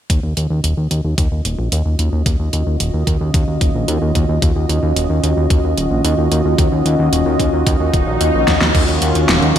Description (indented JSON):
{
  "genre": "synthwave",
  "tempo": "111 BPM",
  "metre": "4/4",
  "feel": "straight",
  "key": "Eb minor",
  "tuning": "A4 = 439 Hz",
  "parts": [
    { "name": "warm analog pad", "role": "sustained chords", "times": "0.1-9.6 s", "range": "Eb3 to Eb5", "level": "-19 LUFS", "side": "right 1 dB", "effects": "chorus, sidechain pumping" },
    { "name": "fat analog bass", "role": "bass", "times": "0.1-9.6 s", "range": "Eb1 to Eb2", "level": "-17 LUFS", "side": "equal", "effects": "tube saturation" },
    { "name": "electronic kick drum", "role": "drums", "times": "0.1-8.9 s", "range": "none", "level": "-17 LUFS", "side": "equal", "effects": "overdrive" },
    { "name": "pop drum kit", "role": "drums", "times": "0.1-9.6 s", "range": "crash cymbal, hi-hat, snare drum", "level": "-19 LUFS", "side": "equal", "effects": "overdrive, gated reverb" },
    { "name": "swell", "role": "sound effects", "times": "7.8-8.7 s", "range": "none", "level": "-22 LUFS", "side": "left 4 dB", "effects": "none" }
  ],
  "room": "moderate lush hall reverb, RT60 2.6 s",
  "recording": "bright 1980s-style digital production",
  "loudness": "-14 LUFS",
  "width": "side -10 dB against mid",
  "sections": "0.1-8.7 A section",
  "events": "filter sweep on analog synth bass 0.1-8.7; filter sweep on analog synth pad 0.1-8.7; swell 7.8-8.7; drum fill 8.5",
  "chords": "0.1 Ebm7",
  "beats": "| 0.10 0.64 1.18 1.72 | 2.26 2.80 3.34 3.88 | 4.42 4.96 5.50 6.04 | 6.58 7.13 7.67 8.21 | 8.75 9.29"
}